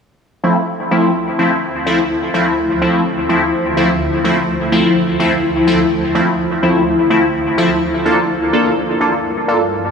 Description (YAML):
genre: techno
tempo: 126 BPM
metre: 4/4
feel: swing 55% on 16ths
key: D minor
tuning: A4 = 440 Hz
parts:
  - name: granular cloud pad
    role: sustained chords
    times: 1.3-9.9 s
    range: D2 to C5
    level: -18 LUFS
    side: left 1 dB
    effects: built-in reverb
  - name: resonant sweep polysynth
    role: stabs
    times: 0.4-9.6 s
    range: F3 to A4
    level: -14 LUFS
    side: equal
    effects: chorus, phaser, dub echo
room: wet lush hall reverb, RT60 2.2 s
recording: studio reverb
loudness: -13 LUFS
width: side -6 dB against mid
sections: 0.2-9.9 A section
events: none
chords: 0.2 Dm9; 7.8 Gm9